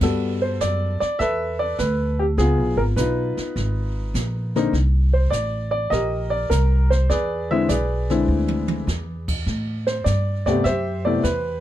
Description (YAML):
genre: jazz piano trio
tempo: 102 BPM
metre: 4/4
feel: swing 69% on 8ths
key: G major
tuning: A4 = 440 Hz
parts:
  - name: warm baby grand piano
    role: melody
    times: 0.0-11.6 s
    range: C3 to E5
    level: -22 LUFS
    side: left 1 dB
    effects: none
  - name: upright bass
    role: bass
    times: 0.0-11.6 s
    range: G#1 to A2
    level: -22 LUFS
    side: equal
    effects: none
  - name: jazz brush drum kit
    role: drums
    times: 0.0-11.6 s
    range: brushed snare drum, crash cymbal, hi-hat, kick drum, snare drum, toms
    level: -30 LUFS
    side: right 2 dB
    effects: none
room: little or no reverb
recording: none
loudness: -19 LUFS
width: side -12 dB against mid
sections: 0.0-11.6 A section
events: drum fill 8.3-8.9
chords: 0.0 Gmaj9; 2.4 C#13 (rootless); 4.7 C5; 7.1 E7b13; 9.5 Am9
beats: | 0.01 0.60 1.19 1.78 | 2.37 2.96 3.56 4.14 | 4.74 5.33 5.92 6.51 | 7.10 7.69 8.28 8.88 | 9.47 10.06 10.65 11.24